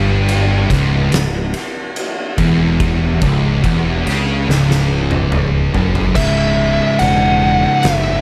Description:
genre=stoner and doom metal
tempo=72 BPM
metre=4/4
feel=straight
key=C# minor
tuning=A4 = 439 Hz
part: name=scooped high-gain guitar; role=riff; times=0.0-8.2 s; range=C#2 to E4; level=-24 LUFS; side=equal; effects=distortion
part: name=thick fuzz guitar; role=riff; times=0.0-8.2 s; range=C#2 to C#3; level=-22 LUFS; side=equal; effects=distortion
part: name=thick fuzz guitar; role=riff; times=0.0-8.2 s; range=C#2 to C#3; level=-22 LUFS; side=equal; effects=distortion
part: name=overdriven fingered electric bass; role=bass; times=0.0-8.2 s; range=C#1 to C#2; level=-21 LUFS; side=equal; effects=none
part: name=oversized low-tuned drum kit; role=drums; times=0.3-8.0 s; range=crash cymbal, kick drum, ride cymbal, snare drum, toms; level=-22 LUFS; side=equal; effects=none
part: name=fuzz lead guitar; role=melody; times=6.2-8.2 s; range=E5 to F#5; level=-18 LUFS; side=equal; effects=distortion, tape echo
room=light reverb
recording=none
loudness=-15 LUFS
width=mono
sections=0.0-6.2 A section; 6.2-8.2 B section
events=drum fill 4.5-6.2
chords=0.0 C#m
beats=0.29 1.13 1.97 | 2.80 3.64 4.48 5.32 | 6.16 6.99 7.83

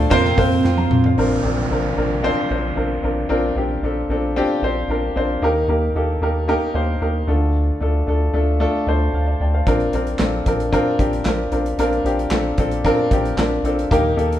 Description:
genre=piano-driven pop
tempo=113 BPM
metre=4/4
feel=straight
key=Bb major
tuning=A4 = 439 Hz
part: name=clear upright piano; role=accompaniment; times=0.0-14.4 s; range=Bb2 to C6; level=-19 LUFS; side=left 1 dB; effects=none
part: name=picked steel-string acoustic guitar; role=riff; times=0.0-1.7 s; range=F2 to F4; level=-21 LUFS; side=right 5 dB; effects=none
part: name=round analog bass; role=bass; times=0.0-14.4 s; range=Bb1 to F2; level=-22 LUFS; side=equal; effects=none
part: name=modern studio drum kit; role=drums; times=0.1-1.2, 9.7-14.4 s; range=handclaps, hi-hat, kick drum, snare drum, toms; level=-22 LUFS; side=equal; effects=none
part: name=downlifter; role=sound effects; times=1.2-5.4 s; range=none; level=-29 LUFS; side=right 2 dB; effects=none
room=moderate large studio reverb, RT60 1.2 s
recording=band playing live in one room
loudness=-17 LUFS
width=side -12 dB against mid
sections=0.0-1.2 A section; 1.2-14.4 B section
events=drum fill 0.6-1.2; upright piano fill 8.6-9.7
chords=0.1 Fsus4; 1.2 Bbadd9; 5.4 Eb; 7.3 Dm; 9.7 Bbadd9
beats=0.12 0.65 | 1.18 1.71 2.24 2.77 | 3.30 3.83 4.36 4.89 | 5.42 5.95 6.49 7.02 | 7.55 8.08 8.61 9.14 | 9.67 10.20 10.73 11.26 | 11.79 12.32 12.85 13.38 | 13.91

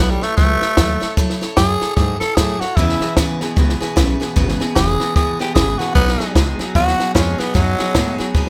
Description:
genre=rockabilly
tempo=150 BPM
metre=4/4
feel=swing 61% on 8ths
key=E major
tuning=A4 = 440 Hz
part: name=growling tenor saxophone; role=melody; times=0.0-8.3 s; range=F#3 to A4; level=-22 LUFS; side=equal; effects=none
part: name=picked steel-string acoustic guitar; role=accompaniment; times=0.0-8.5 s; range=C#3 to C#5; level=-27 LUFS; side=equal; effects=none
part: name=upright bass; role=bass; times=0.0-8.5 s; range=E1 to A2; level=-23 LUFS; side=equal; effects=none
part: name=compact cocktail drum kit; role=drums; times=0.2-8.5 s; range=hi-hat, kick drum, snare drum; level=-20 LUFS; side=equal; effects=none
part: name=electric guitar through a small old amp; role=riff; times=2.8-8.5 s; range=E2 to G#3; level=-27 LUFS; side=equal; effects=subtle chorus
room=light reverb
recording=none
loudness=-17 LUFS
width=mono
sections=0.0-8.5 A section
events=tenor saxophone solo 0.0-8.5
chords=0.0 A6; 2.8 E6; 6.0 B6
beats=0.38 0.78 | 1.18 1.57 1.97 2.37 | 2.77 3.17 3.57 3.96 | 4.36 4.76 5.16 5.56 | 5.96 6.36 6.75 7.15 | 7.55 7.95 8.35

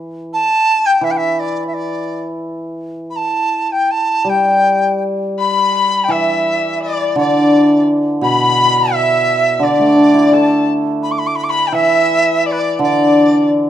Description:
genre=chinese traditional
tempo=84 BPM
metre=4/4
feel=rubato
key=unclear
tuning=A4 = 439 Hz
part: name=hammered dulcimer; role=accompaniment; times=0.0-13.7 s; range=B2 to A4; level=-15 LUFS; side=equal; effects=none
part: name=dizi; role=melody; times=0.3-13.5 s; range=D5 to D6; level=-16 LUFS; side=right 1 dB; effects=none
part: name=rich erhu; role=second line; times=5.4-13.5 s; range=B4 to B5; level=-17 LUFS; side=left 5 dB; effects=none
room=light reverb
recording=close, detailed microphones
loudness=-12 LUFS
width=side -11 dB against mid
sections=0.0-5.4 A section; 5.4-13.7 B section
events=none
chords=none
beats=0.33 1.03 1.74 | 2.46 3.17 3.90 4.64 | 5.38 6.11 6.82 7.53 | 8.23 8.93 9.62 10.32 | 11.02 11.73 12.45 13.17

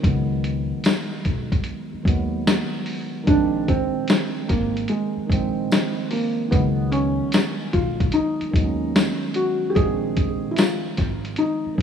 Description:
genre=lo-fi hip hop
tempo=74 BPM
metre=4/4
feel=swing 65% on 16ths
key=unclear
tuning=A4 = 440 Hz
part: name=tine electric piano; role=accompaniment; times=0.0-11.8 s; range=Eb3 to Db4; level=-26 LUFS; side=right 4 dB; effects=cassette tape, low-pass filter
part: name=upright bass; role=bass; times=0.0-11.8 s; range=Ab1 to Eb2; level=-27 LUFS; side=left 3 dB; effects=none
part: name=lo-fi sampler-style drum kit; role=drums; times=0.0-11.8 s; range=hi-hat, kick drum, snare drum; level=-22 LUFS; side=left 1 dB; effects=none
part: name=tambourine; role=percussion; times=0.8-10.8 s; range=none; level=-41 LUFS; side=left 4 dB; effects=none
part: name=felt-muted upright piano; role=melody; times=3.3-11.8 s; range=Ab3 to Ab4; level=-24 LUFS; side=equal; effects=low-pass filter
room=light reverb, studio reverb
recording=rough home demo mix, small room ambience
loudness=-20 LUFS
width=side -8 dB against mid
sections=0.0-11.8 A section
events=break 0.0-3.3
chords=0.0 Db9sus4; 3.3 Bb9sus4; 6.5 Db9sus4; 9.8 Bb9sus4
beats=| 0.03 0.84 1.65 2.46 | 3.27 4.09 4.90 5.71 | 6.52 7.33 8.14 8.95 | 9.76 10.57 11.38

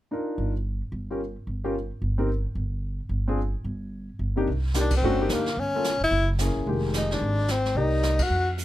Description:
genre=jazz, small-group swing and bop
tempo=219 BPM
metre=4/4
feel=swing 60% on 8ths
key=C minor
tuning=A4 = 440 Hz
part: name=warm concert grand piano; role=accompaniment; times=0.1-8.2 s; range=C3 to D5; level=-28 LUFS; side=left 2 dB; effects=none
part: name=upright bass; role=bass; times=0.4-8.6 s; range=F1 to F2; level=-27 LUFS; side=right 1 dB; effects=none
part: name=vintage brush drum kit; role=drums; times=4.5-8.6 s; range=brushed snare drum, hi-hat, kick drum, ride cymbal, snare drum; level=-32 LUFS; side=right 1 dB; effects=none
part: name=clear tenor saxophone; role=melody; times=4.8-8.5 s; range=Bb3 to F#4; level=-26 LUFS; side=left 2 dB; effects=none
room=little or no reverb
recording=none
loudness=-24 LUFS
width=side -14 dB against mid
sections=0.1-4.5 A section; 4.5-8.6 B section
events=band accent 4.9, 8.2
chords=0.1 Gm7; 1.2 Eb (rootless); 2.3 N.C.; 3.9 G5; 4.5 Cm9; 5.6 Gm7b5; 6.1 F#9; 6.7 Fm11; 7.8 Cm9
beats=| 0.10 0.37 0.65 0.92 | 1.20 1.47 1.75 2.02 | 2.29 2.57 2.84 3.12 | 3.39 3.66 3.94 4.21 | 4.48 4.76 5.03 5.30 | 5.58 5.85 6.12 6.40 | 6.67 6.94 7.22 7.49 | 7.76 8.04 8.31 8.58

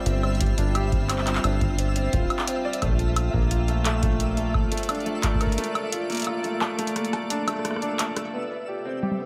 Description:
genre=IDM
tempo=87 BPM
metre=4/4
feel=straight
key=unclear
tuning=A4 = 440 Hz
part: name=icy glass pad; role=sustained chords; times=0.0-9.3 s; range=C3 to G5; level=-36 LUFS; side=equal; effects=chorus, built-in reverb
part: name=felt-muted upright piano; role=arpeggios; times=0.0-9.3 s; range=A3 to D5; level=-31 LUFS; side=equal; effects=low-pass filter, tape echo
part: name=twinkling granular texture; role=texture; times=0.0-9.3 s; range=E5 to G5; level=-40 LUFS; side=equal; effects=built-in reverb, sidechain pumping
part: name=deep acid bass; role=bass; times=0.1-4.7 s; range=D1 to Bb1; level=-27 LUFS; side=equal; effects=none
part: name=booming analog drum machine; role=drums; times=0.1-9.3 s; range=congas, handclaps, hi-hat, rim click, woodblock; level=-32 LUFS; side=equal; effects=low-pass filter on hats, low-pass filter on perc, low-pass filter on snare, tape echo
part: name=electronic kick drum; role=drums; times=0.4-5.6 s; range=none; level=-29 LUFS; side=equal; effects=none
room=light reverb, digital ambience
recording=none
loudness=-25 LUFS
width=mono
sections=0.0-8.3 A section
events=break 5.6-8.3; drum fill 7.0-8.3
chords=0.0 G7sus4; 2.8 Bbmaj7; 8.3 Cmaj7(no3)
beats=| 0.06 0.75 1.44 2.13 | 2.82 3.51 4.20 4.89 | 5.58 6.27 6.96 7.65 | 8.34 9.03

